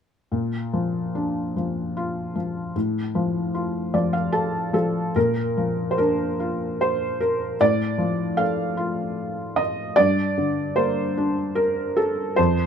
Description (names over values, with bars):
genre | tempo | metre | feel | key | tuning
classical, lyrical solo piano | 75 BPM | 3/4 | rubato | Bb major | A4 = 438 Hz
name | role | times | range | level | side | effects
felt-muted upright piano | solo | 0.3-12.7 s | F2 to A5 | -21 LUFS | equal | none
room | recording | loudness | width
light reverb | close, detailed microphones | -21 LUFS | side -7 dB against mid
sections
0.3-5.2 A section; 5.2-12.7 B section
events
felt piano fill 3.5-5.2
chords
0.3 Bb; 2.8 Dm/A; 5.2 Bb; 7.6 Dm/A; 10.0 Gm